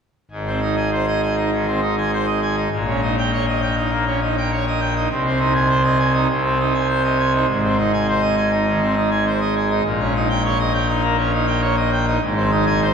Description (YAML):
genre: classical, organ toccata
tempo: 101 BPM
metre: 4/4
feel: straight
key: Ab major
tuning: A4 = 440 Hz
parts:
  - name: pipe organ, full organ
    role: solo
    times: 0.3-12.9 s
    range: Ab1 to Ab5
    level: -17 LUFS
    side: equal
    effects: none
room: wet church reverb, RT60 3.6 s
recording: recorded in a church or concert hall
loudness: -17 LUFS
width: side -6 dB against mid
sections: 0.3-12.9 A section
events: none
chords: 0.3 Ab; 2.7 Eb7/Bb; 5.1 Ab/C; 7.5 Ab; 9.9 Eb7/Bb; 12.2 Ab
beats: | 0.32 0.92 1.52 2.12 | 2.72 3.32 3.92 4.51 | 5.11 5.70 6.30 6.90 | 7.49 8.09 8.68 9.27 | 9.86 10.45 11.04 11.63 | 12.23 12.82